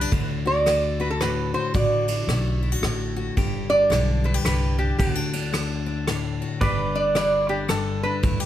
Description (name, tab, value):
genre	honky-tonk and classic country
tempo	111 BPM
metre	3/4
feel	swing 62% on 8ths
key	G major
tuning	A4 = 440 Hz
part	picked steel-string acoustic guitar	accompaniment	0.0-8.5 s	G2 to G4	-27 LUFS	left 5 dB	none
part	upright bass	bass	0.0-8.5 s	G1 to D2	-27 LUFS	equal	none
part	soft brush drum kit	drums	0.1-8.4 s	kick drum, ride cymbal, rim click	-28 LUFS	right 1 dB	none
part	lap resonator guitar	melody	0.5-8.5 s	F#4 to D5	-23 LUFS	right 2 dB	none
part	pedal steel guitar	sustained chords	6.6-8.5 s	B4 to D5	-31 LUFS	right 2 dB	none
room	moderate studio reverb, RT60 0.8 s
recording	none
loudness	-20 LUFS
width	side -12 dB against mid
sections	0.0-8.5 A section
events	none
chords	0.1 D; 3.4 G; 5.0 D; 6.6 G